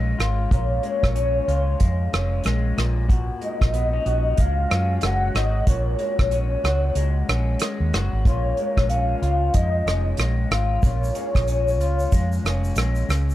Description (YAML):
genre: indie pop, bedroom pop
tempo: 93 BPM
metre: 4/4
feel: swing 60% on 16ths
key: unclear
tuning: A4 = 442 Hz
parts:
  - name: soft octave-layered synth lead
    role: melody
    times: 0.0-12.7 s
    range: C#5 to F#5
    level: -26 LUFS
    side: left 1 dB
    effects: phaser, ensemble chorus
  - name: electric guitar through a small old amp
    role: accompaniment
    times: 0.0-13.3 s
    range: A#2 to F#4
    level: -29 LUFS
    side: left 4 dB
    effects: lush chorus, vibrato effect
  - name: vintage muted fingered electric bass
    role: bass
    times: 0.0-13.3 s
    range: E#1 to F#2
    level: -22 LUFS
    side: equal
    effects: none
  - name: unplugged drum kit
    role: drums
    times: 0.2-13.3 s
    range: hi-hat, kick drum, rim click, shaker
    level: -22 LUFS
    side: equal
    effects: none
room: light reverb, studio ambience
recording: dark, warm production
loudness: -19 LUFS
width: side -14 dB against mid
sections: 0.0-13.3 A section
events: none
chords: 0.0 A#m7; 2.8 F#add9; 8.3 A#m7